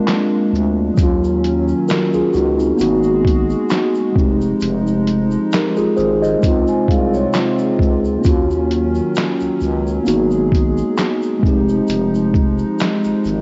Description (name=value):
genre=lo-fi hip hop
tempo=66 BPM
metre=4/4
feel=swing 56% on 16ths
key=Eb dorian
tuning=A4 = 441 Hz
part: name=vibraphone with soft mallets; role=second line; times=0.0-0.7, 6.7-8.2 s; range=C4 to Ab5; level=-27 LUFS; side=equal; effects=low-pass filter, cassette tape, analog delay
part: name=mellow tine electric piano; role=accompaniment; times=0.0-13.4 s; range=Gb3 to Eb5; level=-19 LUFS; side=equal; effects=cassette tape, low-pass filter
part: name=hollow soft pad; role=sustained chords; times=0.0-13.4 s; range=C3 to Ab4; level=-25 LUFS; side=equal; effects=chorus, low-pass filter, cassette tape
part: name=lo-fi sampler-style drum kit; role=drums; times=0.1-13.4 s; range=handclaps, hi-hat, kick drum, shaker, snare drum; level=-21 LUFS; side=equal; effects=cassette tape
part: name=growling FM bass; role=bass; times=0.5-13.4 s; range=F1 to Eb2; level=-25 LUFS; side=equal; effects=none
part: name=tube shaker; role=percussion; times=1.0-13.4 s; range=none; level=-47 LUFS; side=equal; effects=none
room=light reverb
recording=home recording on cassette, nothing above 7.8 kHz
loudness=-16 LUFS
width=mono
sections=0.0-13.4 A section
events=none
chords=0.0 Bb7; 1.0 Ebm7; 2.8 Abm7; 4.2 Fm7; 6.4 Dbmaj7; 8.2 Ebm7; 10.1 Abm7; 11.4 Fm7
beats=0.07 | 0.98 1.89 2.79 3.70 | 4.61 5.52 6.43 7.34 | 8.25 9.16 10.07 10.98 | 11.89 12.79